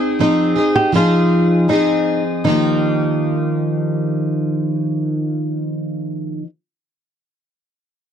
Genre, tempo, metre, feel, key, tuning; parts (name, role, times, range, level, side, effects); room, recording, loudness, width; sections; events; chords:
acoustic pop; 76-84 BPM; 4/4; straight; Eb major; A4 = 436 Hz
picked plugged-in steel-string acoustic guitar; accompaniment; 0.0-6.5 s; Eb3 to Ab4; -16 LUFS; equal; double-tracked left and right
flamenco guitar; melody; 0.2-6.4 s; Eb4 to G4; -19 LUFS; equal
light reverb; dry, close 1970s-style studio recording; -15 LUFS; side -8 dB against mid
0.0-2.4 A section; 2.4-5.6 B section
slowing down 0.0-2.4
0.0 Fm7; 2.4 Ebadd9